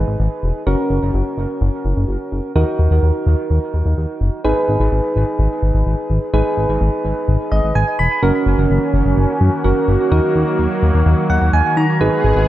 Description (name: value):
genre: pop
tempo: 127 BPM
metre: 4/4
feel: straight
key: G# minor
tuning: A4 = 445 Hz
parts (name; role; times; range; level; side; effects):
- soft electric-piano-like synth keys; accompaniment; 0.0-12.5 s; C#4 to B5; -19 LUFS; right 2 dB; chorus, dub echo
- chorused synth bass; bass; 0.0-12.4 s; E1 to D#3; -15 LUFS; equal; none
- warm analog pad; sustained chords; 8.2-12.5 s; D#3 to G#4; -19 LUFS; equal; lush chorus
room: moderate spring reverb, RT60 1.2 s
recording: echo-heavy mix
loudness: -14 LUFS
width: side -14 dB against mid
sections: 0.0-8.2 A section; 8.2-12.5 B section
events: synth keys fill 7.3-8.2, 11.1-12.0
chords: 0.0 G#m; 0.7 F#; 2.6 D#m; 4.4 G#m; 8.2 F#6; 10.1 D#m